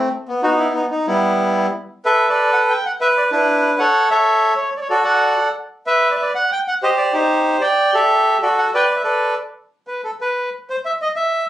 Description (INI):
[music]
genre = tango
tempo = 188 BPM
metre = 3/4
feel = rubato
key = unclear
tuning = A4 = 440 Hz
[part]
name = bandoneon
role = solo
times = 0.0-11.5 s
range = G3 to G5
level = -15 LUFS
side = equal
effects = none
[sound]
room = moderate studio ambience, RT60 0.5 s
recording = recorded on a phone in the room, club reverb, compression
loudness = -15 LUFS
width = side -13 dB against mid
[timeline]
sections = 0.0-2.0 A section; 2.0-9.7 B section; 9.7-11.5 A section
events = none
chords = 0.1 N.C.; 0.4 B; 1.1 Em; 2.0 A13sus4; 3.0 E5; 3.9 A; 4.9 D; 5.8 N.C.; 6.8 Cm; 7.8 Dsus4; 8.4 D; 8.7 Asus4; 9.4 N.C.